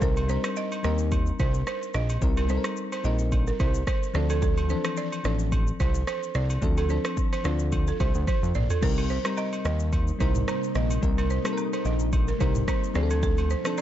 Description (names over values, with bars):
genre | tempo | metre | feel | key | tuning
afrobeats | 109 BPM | 4/4 | swing 55% on 16ths | C dorian | A4 = 440 Hz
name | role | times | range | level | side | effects
bell-like FM electric piano | accompaniment | 0.0-13.8 s | E3 to C5 | -31 LUFS | left 4 dB | chorus
balafon | riff | 0.0-13.8 s | A4 to Eb5 | -33 LUFS | right 8 dB | tape echo
fat analog bass | bass | 0.0-13.6 s | A1 to F2 | -26 LUFS | equal | none
afro-pop drum kit | drums | 0.0-13.8 s | crash cymbal, kick drum, rim click, shaker, toms | -28 LUFS | equal | none
agogo bells and woodblock | percussion | 0.2-13.8 s | none | -38 LUFS | equal | none
glassy FM pad | sustained chords | 9.4-13.8 s | C3 to F4 | -34 LUFS | left 1 dB | ensemble chorus, built-in reverb
room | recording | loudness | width
digital ambience | dark, warm production, nothing above 7.8 kHz | -23 LUFS | side -12 dB against mid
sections
0.0-8.8 A section; 8.8-13.8 B section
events
drum fill 8.3-8.8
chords
0.0 Cm7; 4.1 Dm7; 8.8 Cm7; 13.0 Dm7